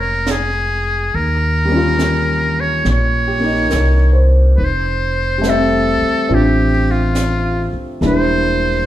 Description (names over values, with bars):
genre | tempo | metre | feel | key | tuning
jazz ballad | 70 BPM | 4/4 | swing 66% on 8ths | F major | A4 = 440 Hz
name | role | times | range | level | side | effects
trumpet with metal mute | melody | 0.0-8.9 s | F4 to Db5 | -18 LUFS | equal | none
warm concert grand piano | accompaniment | 0.0-8.9 s | G3 to E5 | -18 LUFS | left 1 dB | none
upright bass | bass | 0.0-8.9 s | E1 to Eb2 | -16 LUFS | equal | none
jazz brush drum kit | drums | 0.3-8.9 s | brushed snare drum, hi-hat, snare drum | -26 LUFS | right 3 dB | none
room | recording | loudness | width
wet large studio reverb, RT60 0.9 s | heard from further back in the room | -13 LUFS | side -13 dB against mid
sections
0.0-8.9 A section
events
none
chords
0.0 Bbm7; 1.1 Eb9; 4.6 Fmaj7; 8.0 Em7b5